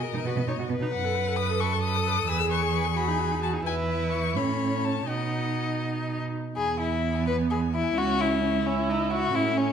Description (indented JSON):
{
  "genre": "quick classical-period movement for string quartet",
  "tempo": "80-90 BPM (dotted quarters)",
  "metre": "6/8",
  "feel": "rubato",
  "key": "E major",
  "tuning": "A4 = 439 Hz",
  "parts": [
    { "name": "rich violin", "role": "melody", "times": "0.0-9.7 s", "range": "C#5 to E6", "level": "-32 LUFS", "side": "left 9 dB", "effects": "none" },
    { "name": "rich violin", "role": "second line", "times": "0.0-9.7 s", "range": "C#4 to D#5", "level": "-29 LUFS", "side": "left 4 dB", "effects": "none" },
    { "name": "rich viola", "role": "accompaniment", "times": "0.1-9.7 s", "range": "B3 to B4", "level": "-30 LUFS", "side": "right 2 dB", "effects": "none" },
    { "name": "rich cello", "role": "bass", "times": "0.1-9.7 s", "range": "C#2 to B2", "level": "-29 LUFS", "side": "right 5 dB", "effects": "none" }
  ],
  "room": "wet recital hall reverb, RT60 1.3 s",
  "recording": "none",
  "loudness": "-24 LUFS",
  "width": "side -8 dB against mid",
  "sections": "0.0-6.6 A section; 6.6-9.7 B section",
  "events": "none",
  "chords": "0.0 B; 0.9 B7/F#; 2.3 E; 3.0 B/E; 3.7 E5; 4.4 A; 5.1 B; 6.6 E; 8.0 C#m"
}